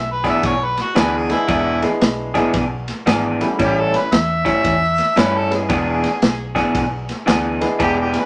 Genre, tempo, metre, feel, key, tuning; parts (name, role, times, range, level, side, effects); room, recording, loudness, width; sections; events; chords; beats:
electric blues shuffle; 114 BPM; 4/4; swing 64% on 8ths; E mixolydian; A4 = 440 Hz
clear harmonica; melody; 0.0-8.3 s; E4 to E5; -23 LUFS; equal; overdrive
vintage muted fingered electric bass; bass; 0.0-8.2 s; E1 to G2; -29 LUFS; equal
electric guitar through a small old amp; riff; 0.2-8.2 s; A2 to G#4; -22 LUFS; equal; spring reverb
crunchy breakbeat drum kit; drums; 0.2-8.2 s; kick drum, ride cymbal, snare drum; -24 LUFS; equal
warm upright piano; accompaniment; 1.3-8.3 s; G3 to G#4; -25 LUFS; equal
moderate studio ambience, RT60 0.5 s; -18 LUFS; mono
0.0-8.3 A section
0.0 E7; 3.6 A7; 5.7 E7
0.43 0.96 | 1.49 2.01 2.54 3.06 | 3.59 4.12 4.64 5.17 | 5.70 6.22 6.75 7.27 | 7.80